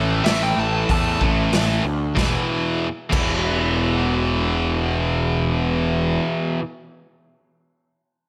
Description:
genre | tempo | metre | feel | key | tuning
hard rock | 94 BPM | 4/4 | straight | unclear | A4 = 440 Hz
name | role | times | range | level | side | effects
overdriven semi-hollow guitar | riff | 0.0-6.6 s | E2 to A3 | -29 LUFS | equal | phaser
tight distorted guitar | riff | 0.0-6.6 s | E2 to A3 | -25 LUFS | equal | distortion
fuzz picked electric bass | bass | 0.0-6.2 s | E1 to E2 | -26 LUFS | equal | overdrive
biting lead guitar | melody | 0.2-1.2 s | E5 to A5 | -29 LUFS | equal | overdrive, tape echo
raw garage drum kit | drums | 0.3-3.3 s | crash cymbal, hi-hat, kick drum, snare drum | -26 LUFS | equal | none
room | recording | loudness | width
light reverb, small room reverb | none | -21 LUFS | mono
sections
0.0-2.2 A section; 2.2-4.7 B section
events
lead electric guitar solo 0.0-2.2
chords
0.0 A5; 2.2 E5

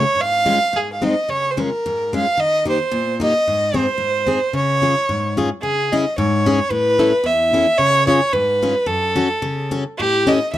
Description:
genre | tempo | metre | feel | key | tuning
alpine folk | 110 BPM | 2/4 | straight | Db major, C# minor from 5.6 s | A4 = 439 Hz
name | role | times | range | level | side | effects
rich fiddle | melody | 0.0-10.6 s | G4 to F5 | -17 LUFS | right 1 dB | none
picked plugged-in steel-string acoustic guitar | accompaniment | 0.0-10.6 s | E2 to A4 | -20 LUFS | left 2 dB | none
room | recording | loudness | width
light reverb | dry, close 1970s-style studio recording | -16 LUFS | side -13 dB against mid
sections
0.0-5.6 A section; 5.6-10.6 B section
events
none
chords
0.2 Db/Ab; 0.7 Ab; 1.3 Db; 2.4 Eb; 3.5 Ab; 4.5 Db; 5.6 C#m; 6.7 Aadd9; 7.8 C#7; 8.9 F#m; 10.0 A

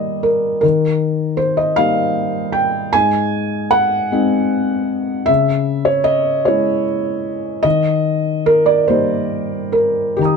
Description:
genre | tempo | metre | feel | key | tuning
neoclassical minimalist piano | 45-53 BPM (dotted quarters) | 6/8 | rubato | unclear | A4 = 440 Hz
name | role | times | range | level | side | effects
felt-muted upright piano | solo | 0.0-10.4 s | G#2 to D#6 | -14 LUFS | equal | none
room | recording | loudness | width
light reverb | dark, warm production | -14 LUFS | side -5 dB against mid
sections
0.0-10.4 A section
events
none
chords
0.0 D#; 2.9 G#; 5.3 C#m; 7.6 D#

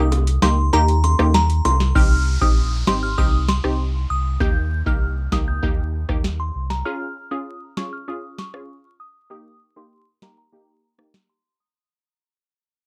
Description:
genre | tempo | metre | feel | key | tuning
dancehall | 98 BPM | 4/4 | straight | unclear | A4 = 440 Hz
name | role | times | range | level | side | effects
analog pluck | accompaniment | 0.0-11.1 s | Bb3 to Ab4 | -29 LUFS | equal | chorus, low-pass filter
sub bass with octave | bass | 0.0-6.8 s | Ab1 to Eb2 | -23 LUFS | equal | none
booming analog drum machine | drums | 0.1-11.3 s | hi-hat, kick drum, rim click, snare drum | -22 LUFS | equal | none
bongos | percussion | 0.1-1.8 s | none | -32 LUFS | equal | none
glassy synth bell | melody | 0.4-11.7 s | Bb5 to G6 | -27 LUFS | equal | chorus, low-pass filter, tape echo
downlifter | sound effects | 2.0-6.9 s | none | -39 LUFS | equal | none
room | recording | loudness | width
little or no reverb | vinyl crackle | -20 LUFS | mono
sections
0.0-2.0 A section; 2.0-11.8 B section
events
break 0.0-2.0; fade-out 2.0-11.8; filter sweep 2.0-11.8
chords
0.0 Eb; 2.0 Cm; 4.4 Eb; 6.9 Db; 9.3 Eb

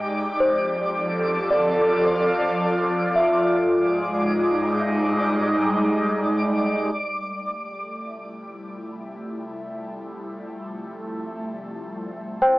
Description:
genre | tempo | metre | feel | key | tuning
ambient | 55 BPM | 3/4 | straight | unclear | A4 = 443 Hz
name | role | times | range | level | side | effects
airy breathy pad | sustained chords | 0.0-12.6 s | F3 to A4 | -23 LUFS | equal | chorus, phaser, cassette tape
clear studio cello section | bass | 0.0-6.9 s | F2 to Ab2 | -33 LUFS | equal | none
twinkling granular texture | texture | 0.0-7.0 s | D5 to D6 | -28 LUFS | equal | built-in reverb, cassette tape
small celesta | arpeggios | 0.4-7.0, 12.4-12.6 s | C5 to G5 | -23 LUFS | equal | cassette tape, tape echo
organ-like drone | drone | 7.7-12.6 s | C3 to F3 | -44 LUFS | equal | ensemble chorus, built-in reverb, cassette tape
room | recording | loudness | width
wet studio reverb, RT60 0.5 s | home recording on cassette, AM radio sound | -20 LUFS | side -20 dB against mid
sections
0.0-7.0 A section; 7.0-12.6 B section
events
fade-in on synth texture 0.0-7.0; fade-in on analog synth pad 7.0-12.6; fade-in on synth drone 7.0-12.6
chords
0.4 F; 3.7 Ab5; 7.0 Am7

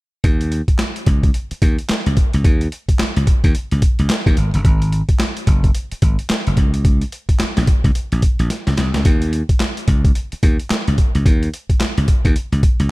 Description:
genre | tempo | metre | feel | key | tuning
R&B, new jack swing | 109 BPM | 4/4 | swing 61% on 16ths | unclear | A4 = 440 Hz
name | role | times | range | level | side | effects
slap bass | bass | 0.2-12.9 s | Gb1 to Eb2 | -17 LUFS | equal | none
boom bap sampler-style drum kit | drums | 0.2-12.9 s | handclaps, hi-hat, kick drum, snare drum | -16 LUFS | equal | gated reverb
room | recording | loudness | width
little or no reverb | none | -14 LUFS | side -21 dB against mid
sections
0.2-12.9 A section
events
drum fill 8.5-9.1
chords
none

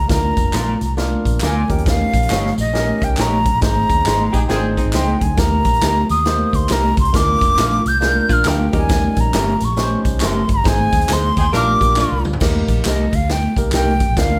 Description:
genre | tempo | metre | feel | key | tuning
uptempo 1960s-style soul | 136 BPM | 4/4 | swing 63% on 8ths | Eb major | A4 = 440 Hz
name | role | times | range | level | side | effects
breathy silver concert flute | melody | 0.0-14.4 s | Eb5 to G6 | -22 LUFS | equal | none
vintage muted fingered electric bass | bass | 0.0-14.4 s | F1 to Eb2 | -23 LUFS | equal | none
barky tine electric piano | accompaniment | 0.1-14.4 s | G3 to C5 | -28 LUFS | equal | none
swinging big-band drum kit | drums | 0.1-14.3 s | crash cymbal, hi-hat, kick drum, snare drum, toms | -21 LUFS | equal | none
congas | percussion | 0.1-14.3 s | none | -35 LUFS | equal | none
tambourine and handclaps | percussion | 0.1-14.3 s | none | -33 LUFS | equal | none
electric guitar through a small old amp | stabs | 0.5-13.9 s | Db4 to D5 | -28 LUFS | equal | none
clear saxophone section | second line | 4.3-4.7, 11.4-11.7 s | C4 to Bb4 | -26 LUFS | equal | none
archtop guitar, miked and amplified | riff | 4.3-5.3, 8.3-12.4 s | C4 to Bb4 | -29 LUFS | equal | none
room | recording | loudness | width
light reverb | band playing live in one room | -17 LUFS | mono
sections
0.0-12.4 A section; 12.4-14.4 B section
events
band accent 3.6-5.4, 10.7-12.4; drum fill 12.0-12.4; flute solo 12.4-14.4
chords
0.1 Bb; 1.6 Eb7; 3.6 Ab; 5.4 Eb; 7.1 Bb; 8.7 Eb7; 10.7 Ab; 11.5 Bb; 12.4 Eb

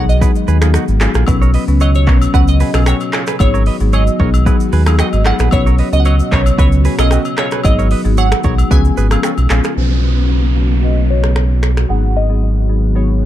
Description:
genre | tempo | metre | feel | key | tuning
afrobeats | 113 BPM | 4/4 | straight | unclear | A4 = 440 Hz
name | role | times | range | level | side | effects
glassy wavetable pluck | melody | 0.0-13.3 s | C#5 to G#5 | -22 LUFS | right 2 dB | chorus, low-pass filter, ping-pong delay
marimba with medium mallets | accompaniment | 0.0-13.3 s | E#3 to B4 | -20 LUFS | left 5 dB | low-pass filter
airy breathy pad | sustained chords | 0.0-13.3 s | B2 to F#4 | -24 LUFS | right 1 dB | chorus, low-pass filter
direct-recorded clean electric guitar | riff | 0.0-9.7 s | C#4 to D#5 | -25 LUFS | right 8 dB | low-pass filter, ping-pong delay
sub bass with octave | bass | 0.0-13.3 s | G#1 to D#2 | -12 LUFS | equal | none
afro-pop drum kit | drums | 0.1-11.9 s | finger snaps, handclaps, hi-hat, kick drum, rim click, shaker | -16 LUFS | equal | overdrive
agogo bells and woodblock | percussion | 1.3-9.5 s | none | -26 LUFS | left 4 dB | none
downlifter | sound effects | 9.8-13.3 s | none | -26 LUFS | right 3 dB | none
room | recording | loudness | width
little or no reverb | dark, warm production | -11 LUFS | side -12 dB against mid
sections
0.0-9.8 A section; 9.8-13.3 B section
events
none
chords
0.0 G#m7; 1.3 Bsus2; 3.4 G#m7; 5.5 Bsus2; 7.6 G#m7; 8.7 C#7; 9.8 Bsus2; 11.9 G#m7

